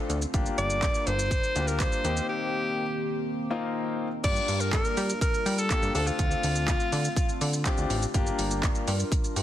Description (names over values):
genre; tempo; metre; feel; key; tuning
dance-pop; 123 BPM; 4/4; straight; G minor; A4 = 439 Hz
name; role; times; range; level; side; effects
warm concert grand piano; accompaniment; 0.0-8.9 s; Bb3 to A4; -32 LUFS; left 4 dB; sidechain pumping
chorused pulse-width pad; sustained chords; 0.0-9.4 s; D3 to Bb4; -36 LUFS; equal; sidechain pumping
plucky analog bass; bass; 0.1-9.4 s; G1 to G3; -29 LUFS; equal; sidechain pumping
pop drum kit; drums; 0.1-9.4 s; crash cymbal, handclaps, hi-hat, kick drum, shaker; -28 LUFS; equal; none
edgy alto saxophone; melody; 0.6-7.9 s; F4 to D5; -30 LUFS; equal; ping-pong delay
room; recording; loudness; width
light reverb; dense, heavily limited modern master; -25 LUFS; side -12 dB against mid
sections
0.0-4.2 A section; 4.2-9.4 B section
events
break 2.3-4.2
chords
0.3 Gm7; 2.0 Eb6; 4.2 Gm7; 5.9 Dm7; 8.1 Gm7